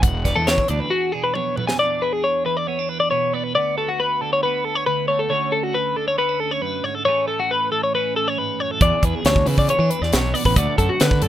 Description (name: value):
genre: math rock and midwest emo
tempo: 137 BPM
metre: 4/4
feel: straight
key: unclear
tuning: A4 = 441 Hz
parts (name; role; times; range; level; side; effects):
- twelve-string electric guitar; accompaniment; 0.0-11.3 s; D2 to B4; -27 LUFS; right 14 dB; spring reverb
- twelve-string electric guitar; arpeggios; 0.0-11.3 s; F#4 to G#5; -20 LUFS; left 2 dB; none
- fuzz fingered electric bass; bass; 0.0-0.8, 8.8-11.3 s; E1 to E3; -21 LUFS; right 1 dB; overdrive
- crisp fusion drum kit; drums; 0.0-1.8, 8.8-11.3 s; hi-hat, kick drum, snare drum, toms; -20 LUFS; equal; none
room: little or no reverb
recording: rough home demo mix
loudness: -18 LUFS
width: side -12 dB against mid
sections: 0.0-1.8 A section; 1.8-11.3 B section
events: break 0.9-1.8; drum fill 1.4-1.8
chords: 0.0 E9; 1.8 E7; 3.6 Bm7/D; 5.3 Dmaj7; 7.1 Amaj7; 8.8 E7; 10.6 Bm7/D